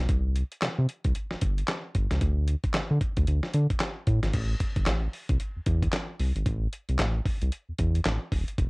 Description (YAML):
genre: R&B, new jack swing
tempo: 113 BPM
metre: 4/4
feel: swing 61% on 16ths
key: unclear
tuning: A4 = 440 Hz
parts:
  - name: round analog bass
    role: bass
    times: 0.0-8.7 s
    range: Eb1 to D3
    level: -25 LUFS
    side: equal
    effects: none
  - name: dusty soul sampler-style drum kit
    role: drums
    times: 0.1-8.7 s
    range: crash cymbal, handclaps, hi-hat, kick drum, snare drum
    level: -28 LUFS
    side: equal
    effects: cassette tape
room: little or no reverb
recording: home recording on cassette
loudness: -25 LUFS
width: side -30 dB against mid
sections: 0.0-4.3 A section; 4.3-8.7 B section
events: none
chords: none